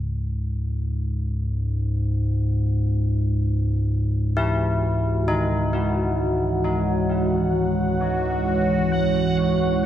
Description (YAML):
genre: dark ambient drone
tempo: free time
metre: none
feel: none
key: C# minor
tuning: A4 = 440 Hz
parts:
  - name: deep rumbling drone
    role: drone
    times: 0.0-9.9 s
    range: C#2 to G#2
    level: -23 LUFS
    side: equal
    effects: built-in reverb
  - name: deep dark ambient pad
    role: sustained chords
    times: 5.1-9.9 s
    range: E3 to C#5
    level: -24 LUFS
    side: right 2 dB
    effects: chorus, built-in reverb
  - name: old church bells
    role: arpeggios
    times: 4.4-9.9 s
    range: D#4 to E4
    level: -27 LUFS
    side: left 2 dB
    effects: tape echo
  - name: bubbling stepped-filter texture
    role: texture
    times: 4.4-9.9 s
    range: F#4 to F#5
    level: -26 LUFS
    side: equal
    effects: chorus, built-in reverb
room: wet plate reverb, RT60 2.7 s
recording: echo-heavy mix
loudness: -20 LUFS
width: side -11 dB against mid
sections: 0.0-9.9 A section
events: none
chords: 0.0 C#m